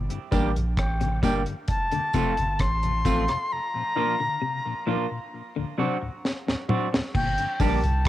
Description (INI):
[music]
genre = roots reggae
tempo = 66 BPM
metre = 4/4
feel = straight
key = unclear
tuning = A4 = 440 Hz
[part]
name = clean electric guitar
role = arpeggios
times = 0.0-7.8 s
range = Bb2 to D3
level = -32 LUFS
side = left 5 dB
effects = tremolo, cassette tape
[part]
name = soft dub sub bass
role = bass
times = 0.0-8.1 s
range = F1 to C2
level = -26 LUFS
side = equal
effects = none
[part]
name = mellow tonewheel organ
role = accompaniment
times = 0.1-7.9 s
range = D2 to D4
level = -35 LUFS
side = left 4 dB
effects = chorus vibrato, stopped rotary speaker, cassette tape, tape echo
[part]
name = deep reggae drum kit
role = drums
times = 0.1-8.1 s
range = crash cymbal, hi-hat, kick drum, rim click, snare drum, toms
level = -27 LUFS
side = equal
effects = none
[part]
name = clean electric guitar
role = accompaniment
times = 0.3-7.8 s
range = F3 to G4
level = -32 LUFS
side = right 7 dB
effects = cassette tape, tape echo
[part]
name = dark upright piano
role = stabs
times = 0.3-7.8 s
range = C4 to C5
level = -32 LUFS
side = left 6 dB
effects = cassette tape
[part]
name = tambourine and woodblock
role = percussion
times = 0.3-8.1 s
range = none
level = -41 LUFS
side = right 9 dB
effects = none
[part]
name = bright reedy silver concert flute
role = melody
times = 0.8-8.1 s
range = G5 to C6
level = -28 LUFS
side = left 2 dB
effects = cassette tape, tape echo
[sound]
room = light reverb, small room reverb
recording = home recording on cassette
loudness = -23 LUFS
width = side -14 dB against mid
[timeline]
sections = 0.0-7.1 A section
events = break 3.5-7.1; drum fill 6.2-7.1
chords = 0.0 Gm; 1.7 F; 3.5 Bb; 5.3 D7; 7.1 Gm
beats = 0.78 1.69 2.60 | 3.51 4.42 5.33 6.24 | 7.15 8.05